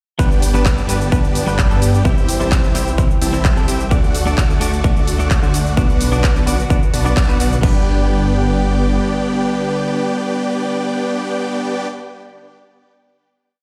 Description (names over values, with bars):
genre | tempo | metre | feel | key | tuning
EDM, festival progressive house | 129 BPM | 4/4 | straight | G major | A4 = 439 Hz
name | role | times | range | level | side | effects
clean electric guitar | accompaniment | 0.2-11.9 s | G3 to D5 | -26 LUFS | equal | sidechain pumping, delay
lush unison pad | sustained chords | 0.2-11.9 s | D3 to G4 | -28 LUFS | equal | chorus, sidechain pumping
big supersaw lead | riff | 0.2-11.9 s | A3 to A5 | -24 LUFS | equal | sidechain pumping, delay
detuned saw bass | bass | 0.2-9.0 s | G1 to G2 | -21 LUFS | equal | sidechain pumping
big-room dance drum kit | drums | 0.2-7.7 s | cabasa, crash cymbal, handclaps, hi-hat | -28 LUFS | equal | overdrive
electronic kick drum | drums | 0.2-7.7 s | none | -18 LUFS | equal | overdrive
room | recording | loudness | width
light reverb, digital ambience | played on a big sound system in a bare room, large studio reverb | -16 LUFS | mono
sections
0.2-7.6 drop; 7.6-11.4 final chord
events
drop 0.2-7.6; band accent 7.2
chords
0.2 G; 2.1 C; 3.9 D; 5.8 Bm; 7.6 G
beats
| 0.19 0.66 1.12 1.59 | 2.05 2.52 2.98 3.45 | 3.91 4.38 4.84 5.31 | 5.77 6.24 6.70 7.17 | 7.63 8.10 8.56 9.03 | 9.49 9.96 10.42 10.89